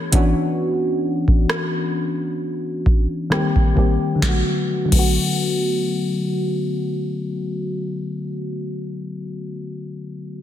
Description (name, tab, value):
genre	contemporary R&B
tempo	66 BPM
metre	4/4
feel	swing 54% on 16ths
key	B minor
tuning	A4 = 441 Hz
part	mellow FM electric piano	accompaniment	0.0-10.4 s	D3 to G4	-21 LUFS	left 1 dB	chorus, low-pass filter
part	booming analog drum machine	drums	0.1-5.2 s	crash cymbal, hi-hat, kick drum, rim click, snare drum	-19 LUFS	equal	none
room	light reverb, digital ambience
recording	dense, heavily limited modern master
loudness	-18 LUFS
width	side -11 dB against mid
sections	0.0-4.2 A section; 4.2-7.9 B section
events	filter sweep on FM electric piano 0.0-4.2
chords	0.1 Dmaj13; 3.3 Cm7; 4.2 Bm7